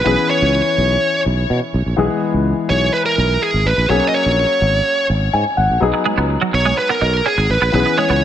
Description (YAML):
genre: pop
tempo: 125 BPM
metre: 4/4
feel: straight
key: B major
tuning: A4 = 440 Hz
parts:
  - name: high-gain lead guitar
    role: melody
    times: 0.0-8.2 s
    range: G#4 to D#5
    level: -17 LUFS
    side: right 1 dB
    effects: distortion, ping-pong delay
  - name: warm concert grand piano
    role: accompaniment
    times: 0.0-8.2 s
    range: E3 to G#5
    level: -20 LUFS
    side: left 4 dB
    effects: none
  - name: sustaining fretless electric bass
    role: bass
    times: 0.0-8.2 s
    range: G#1 to B2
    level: -18 LUFS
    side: equal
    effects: none
  - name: twelve-string electric guitar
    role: riff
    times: 5.9-8.2 s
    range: F#3 to D#4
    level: -21 LUFS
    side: right 6 dB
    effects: ensemble chorus, ping-pong delay
room: moderate concert hall reverb, RT60 2.3 s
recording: none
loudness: -14 LUFS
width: side -10 dB against mid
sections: 0.0-8.2 A section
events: grand piano fill 5.1-5.8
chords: 0.1 C#m7/B; 2.0 E/B; 3.9 F#add9; 5.8 B6; 7.7 C#m7/B